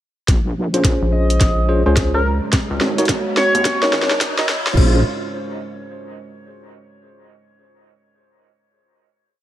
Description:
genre	glitch hop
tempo	107 BPM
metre	4/4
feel	swing 63% on 16ths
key	Bb minor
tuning	A4 = 444 Hz
part	dark analog pad	sustained chords	0.3-5.0 s	Ab3 to Db5	-26 LUFS	right 1 dB	chorus, sidechain pumping
part	wobble bass	bass	0.3-5.0 s	Ab1 to Bb1	-20 LUFS	equal	chorus, high-pass filter
part	drum and bass drum kit	drums	0.3-4.9 s	crash cymbal, hi-hat, snare drum	-21 LUFS	equal	none
part	electronic kick drum	drums	0.3-4.9 s	none	-17 LUFS	equal	none
part	riser	sound effects	1.7-4.8 s	none	-28 LUFS	right 1 dB	none
part	tine electric piano	stabs	0.7-5.0 s	Db4 to Eb5	-22 LUFS	equal	medium tremolo, vintage 12-bit sampler grit, sidechain pumping, dub echo
part	rubbery square bass	bass	1.0-4.8 s	Ab1 to Eb2	-19 LUFS	equal	none
part	sync lead	melody	1.1-3.8 s	Bb4 to Eb5	-23 LUFS	equal	chorus, dub echo
room	light reverb, digital ambience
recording	high-pass filter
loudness	-15 LUFS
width	side -13 dB against mid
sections	0.3-4.8 build; 4.8-7.0 final chord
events	build-up 0.3-4.8; drum fill 0.3-4.8; filter sweep on analog synth lead 0.3-4.8; filter sweep 0.3-4.8; riser 1.7-4.8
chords	0.3 Bbm9; 2.5 Ab7sus4; 4.8 Bbm9

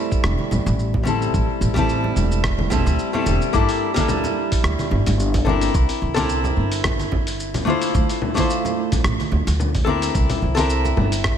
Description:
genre	sunset chillout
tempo	109 BPM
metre	4/4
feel	swing 55% on 16ths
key	G dorian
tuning	A4 = 440 Hz
part	archtop guitar, miked and amplified	accompaniment	0.0-11.4 s	G3 to C5	-22 LUFS	moving between left 6 dB and right 5 dB	auto-pan, vintage 12-bit sampler grit, digital delay, slapback echo
part	dusty soul sampler-style drum kit	drums	0.1-11.4 s	congas, hi-hat, rim click, shaker	-26 LUFS	left 2 dB	none
part	electronic kick drum	drums	0.1-11.4 s	none	-22 LUFS	equal	none
part	upright bass	bass	0.2-11.4 s	E1 to D2	-21 LUFS	equal	none
part	congas	percussion	0.4-10.9 s	none	-30 LUFS	right 2 dB	none
room	light reverb, digital ambience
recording	none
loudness	-18 LUFS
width	side -8 dB against mid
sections	0.0-3.5 A section; 3.5-11.4 B section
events	none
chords	0.0 Am7; 3.5 Gm69; 5.7 C13; 7.9 Dm9; 10.1 Gm69

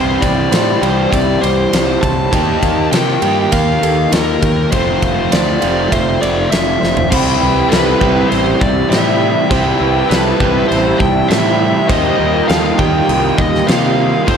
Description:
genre	rock, shoegaze and dream pop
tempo	100 BPM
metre	4/4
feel	straight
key	C major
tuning	A4 = 440 Hz
part	smooth overdriven lead guitar	melody	0.0-14.4 s	Bb4 to A5	-19 LUFS	left 4 dB	slapback echo
part	direct-recorded clean electric guitar	arpeggios	0.0-14.4 s	G4 to E5	-24 LUFS	right 8 dB	analog chorus, slapback echo
part	overdriven electric guitar	riff	0.0-14.4 s	F2 to G4	-19 LUFS	left 10 dB	lush chorus
part	overdriven semi-hollow guitar	riff	0.0-14.4 s	F2 to A4	-18 LUFS	right 10 dB	reverse reverb
part	fuzz fingered electric bass	bass	0.0-14.4 s	F1 to C3	-19 LUFS	equal	overdrive
part	huge arena drum kit	drums	0.2-14.4 s	crash cymbal, kick drum, ride cymbal, snare drum, toms	-17 LUFS	equal	none
part	warm analog pad	sustained chords	7.1-14.4 s	C4 to E6	-24 LUFS	equal	chorus
room	light reverb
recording	none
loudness	-11 LUFS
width	side -7 dB against mid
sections	0.0-7.1 A section; 7.1-14.4 B section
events	drum fill 6.8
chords	0.0 C; 2.3 Ebadd9; 4.7 Fmaj7; 7.1 C; 11.9 Ebadd9

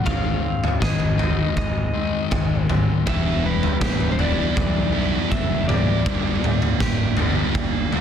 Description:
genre	quiet-loud alternative rock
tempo	80 BPM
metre	4/4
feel	straight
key	unclear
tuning	A4 = 440 Hz
part	lightly driven lead guitar	melody	0.0-8.0 s	B4 to F5	-29 LUFS	left 2 dB	digital delay
part	twangy electric guitar	arpeggios	0.0-8.0 s	E2 to G#4	-33 LUFS	right 2 dB	none
part	thick fuzz guitar	riff	0.0-8.0 s	G2 to B3	-26 LUFS	left 10 dB	distortion
part	fuzz fingered electric bass	bass	0.1-7.8 s	E1 to B1	-26 LUFS	right 1 dB	overdrive
part	raw garage drum kit	drums	0.1-8.0 s	kick drum, snare drum, toms	-22 LUFS	equal	none
part	thick fuzz guitar	riff	3.1-8.0 s	E3 to E4	-26 LUFS	right 14 dB	distortion
room	light reverb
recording	dense, heavily limited modern master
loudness	-18 LUFS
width	side -8 dB against mid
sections	0.0-8.0 A section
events	none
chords	0.1 G#; 3.1 Em; 6.1 Gm

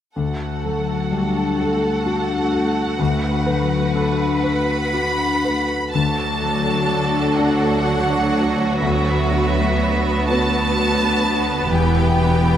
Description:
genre	cinematic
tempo	42 BPM (dotted quarters)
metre	6/8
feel	rubato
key	D major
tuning	A4 = 440 Hz
part	warm symphonic violin section	second line	0.2-12.6 s	F#4 to F#5	-24 LUFS	equal	none
part	clear grand piano	accompaniment	0.2-12.6 s	D2 to B4	-23 LUFS	left 1 dB	none
part	clear symphonic viola section	accompaniment	0.2-12.6 s	E3 to F#4	-26 LUFS	right 1 dB	none
part	concert harp	arpeggios	0.2-12.6 s	D3 to B4	-24 LUFS	left 5 dB	none
part	rich symphonic violin section	melody	4.4-12.6 s	E5 to B5	-24 LUFS	equal	none
part	rich symphonic cello section	bass	5.9-12.6 s	D2 to E2	-25 LUFS	right 2 dB	none
part	rich symphonic double bass section	bass	5.9-12.6 s	E1 to D2	-23 LUFS	right 3 dB	none
room	moderate scoring stage reverb, RT60 2.0 s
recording	close, detailed microphones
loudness	-17 LUFS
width	side -10 dB against mid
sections	0.2-5.9 A section; 5.9-12.6 B section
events	none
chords	0.2 D; 3.0 Bm/D; 5.9 D; 8.8 Bm/D; 11.7 Em

